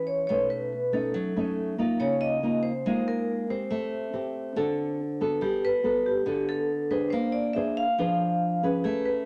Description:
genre	bossa nova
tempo	140 BPM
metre	4/4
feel	straight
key	unclear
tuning	A4 = 440 Hz
part	vibraphone with medium hard mallets	melody	0.0-9.3 s	G4 to F5	-31 LUFS	equal	none
part	nylon-string guitar	accompaniment	0.0-9.3 s	B2 to C5	-30 LUFS	equal	none
room	wet studio reverb, RT60 0.7 s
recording	none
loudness	-27 LUFS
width	mono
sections	0.0-9.3 A section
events	none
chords	0.3 B9; 2.0 C#69; 3.7 Am7; 4.6 D7; 5.4 Gmaj9; 7.1 Bb9

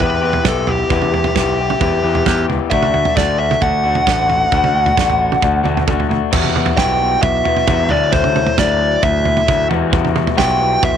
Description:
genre	indie rock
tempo	133 BPM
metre	4/4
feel	straight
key	unclear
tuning	A4 = 441 Hz
part	fuzz lead guitar	melody	0.0-11.0 s	G4 to G5	-17 LUFS	right 1 dB	distortion, slapback echo
part	electric guitar through a small old amp	riff	0.0-11.0 s	E3 to G4	-19 LUFS	left 12 dB	wide subtle chorus
part	growling picked electric bass	bass	0.0-11.0 s	A1 to E2	-20 LUFS	right 1 dB	overdrive
part	loose indie drum kit	drums	0.0-10.9 s	crash cymbal, kick drum, snare drum, toms	-19 LUFS	right 5 dB	none
room	light reverb, studio ambience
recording	1960s-style stereo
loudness	-13 LUFS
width	side -8 dB against mid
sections	0.0-6.3 A section; 6.3-11.0 B section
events	none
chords	0.0 Em; 2.7 D; 6.3 Emadd9; 7.9 Dadd9; 9.7 Emadd9

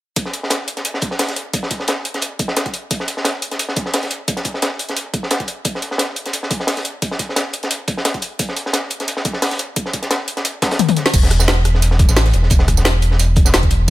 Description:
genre	liquid drum and bass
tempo	175 BPM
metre	4/4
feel	swing 54% on 16ths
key	unclear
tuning	A4 = 440 Hz
part	crunchy breakbeat drum kit	drums	0.2-13.8 s	hi-hat, snare drum	-21 LUFS	equal	high-pass filter on hats, small room ambience, high-pass filter on snare, high-pass filter on room
part	drum and bass drum kit	drums	0.2-13.8 s	crash cymbal, hi-hat, rim click, snare drum, tambourine, toms	-20 LUFS	left 1 dB	overdrive, small room ambience
part	electronic kick drum	drums	0.2-13.7 s	none	-18 LUFS	equal	overdrive, high-pass filter on kick, small room ambience
part	sub bass with octave	bass	11.1-13.9 s	E1 to A1	-14 LUFS	equal	none
room	little or no reverb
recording	none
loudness	-16 LUFS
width	side -16 dB against mid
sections	0.2-11.1 A section; 11.1-13.9 B section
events	drum fill 10.8-11.1; drop 11.1-13.9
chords	none

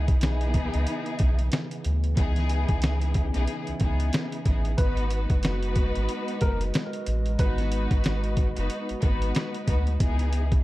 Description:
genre	hip hop, boom-bap hip-hop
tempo	92 BPM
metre	4/4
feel	swing 60% on 16ths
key	G# minor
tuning	A4 = 440 Hz
part	warm studio string section	accompaniment	0.0-10.6 s	B3 to B4	-32 LUFS	left 2 dB	high-pass filter, low-pass filter
part	dark analog pad	sustained chords	0.0-10.6 s	C#3 to D#5	-36 LUFS	right 1 dB	chorus, high-pass filter, low-pass filter
part	soft dub sub bass	bass	0.0-10.6 s	F#1 to D2	-26 LUFS	equal	none
part	trip hop sampler-style drum kit	drums	0.1-10.6 s	hi-hat, kick drum, snare drum	-25 LUFS	equal	none
part	dark upright piano	melody	4.8-10.0 s	A#4 to B4	-37 LUFS	left 1 dB	high-pass filter, low-pass filter, digital delay
room	little or no reverb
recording	dark, warm production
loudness	-23 LUFS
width	side -17 dB against mid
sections	0.0-10.6 A section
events	none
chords	0.0 C#m9; 4.8 G#m7; 10.0 C#m9

